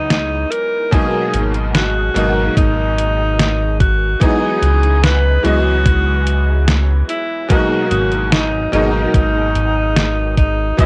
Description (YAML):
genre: vaporwave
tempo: 73 BPM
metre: 4/4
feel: straight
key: unclear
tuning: A4 = 441 Hz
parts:
  - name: clear alto saxophone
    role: melody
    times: 0.0-10.9 s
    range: D#4 to B4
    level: -21 LUFS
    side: equal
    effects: cassette tape, tape echo
  - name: bright electric grand piano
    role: accompaniment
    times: 0.0-10.9 s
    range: B2 to D#5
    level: -22 LUFS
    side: equal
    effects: ensemble chorus, cassette tape
  - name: chorused synth bass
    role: bass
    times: 0.0-10.7 s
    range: G#1 to C#2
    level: -19 LUFS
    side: equal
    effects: none
  - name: detuned 8-bit digital drum machine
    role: drums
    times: 0.1-10.9 s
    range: hi-hat, snare drum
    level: -20 LUFS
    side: equal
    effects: cassette tape
  - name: electronic kick drum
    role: drums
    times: 0.9-10.9 s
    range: none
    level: -17 LUFS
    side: equal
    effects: cassette tape
room: little or no reverb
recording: home recording on cassette, faint mains hum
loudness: -15 LUFS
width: mono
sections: 0.0-10.9 A section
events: none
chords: 0.0 C#m11; 0.9 G#m9; 4.2 C#m11; 7.5 G#m9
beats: 0.10 | 0.93 1.75 2.57 3.39 | 4.21 5.03 5.86 6.68 | 7.50 8.32 9.14 9.97 | 10.79